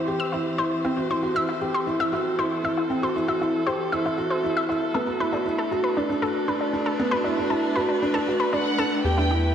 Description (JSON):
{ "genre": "piano and strings electronica", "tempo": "117 BPM", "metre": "4/4", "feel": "straight", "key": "unclear", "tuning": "A4 = 438 Hz", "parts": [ { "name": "dark string quartet", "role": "sustained chords", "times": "0.0-9.5 s", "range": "E3 to C5", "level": "-30 LUFS", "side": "right 1 dB", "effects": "none" }, { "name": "analog pluck", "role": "arpeggios", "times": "0.0-9.4 s", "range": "D4 to E6", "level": "-28 LUFS", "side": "left 1 dB", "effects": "chorus, cassette tape, tape echo" }, { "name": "felt-muted upright piano", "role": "riff", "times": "0.0-9.5 s", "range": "B3 to G4", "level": "-25 LUFS", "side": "equal", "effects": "tape echo" }, { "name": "rich studio violin section", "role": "melody", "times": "8.5-9.5 s", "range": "F#5 to G5", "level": "-28 LUFS", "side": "equal", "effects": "none" }, { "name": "round analog bass", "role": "bass", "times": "9.0-9.5 s", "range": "E2", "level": "-22 LUFS", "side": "equal", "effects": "none" } ], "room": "wet lush hall reverb, RT60 2.7 s", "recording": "none", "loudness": "-22 LUFS", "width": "side -8 dB against mid", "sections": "0.0-9.1 A section", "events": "build-up 0.0-9.1", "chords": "0.0 C; 0.8 Am; 4.9 Bm7" }